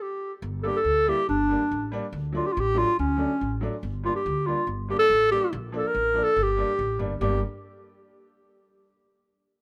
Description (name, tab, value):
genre	klezmer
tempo	142 BPM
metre	2/4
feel	straight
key	G minor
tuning	A4 = 440 Hz
part	mellow clarinet	melody	0.0-7.4 s	C#4 to Bb4	-25 LUFS	equal	slapback echo
part	upright bass	bass	0.4-7.4 s	G1 to D2	-33 LUFS	equal	none
part	bright upright piano	accompaniment	0.6-7.4 s	F3 to E4	-37 LUFS	equal	none
room	studio ambience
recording	rough home demo mix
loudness	-25 LUFS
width	mono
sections	0.4-7.2 A section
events	stop 0.0-0.4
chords	0.4 Gm; 2.1 D; 3.8 Gm; 5.5 Bb; 6.4 Gm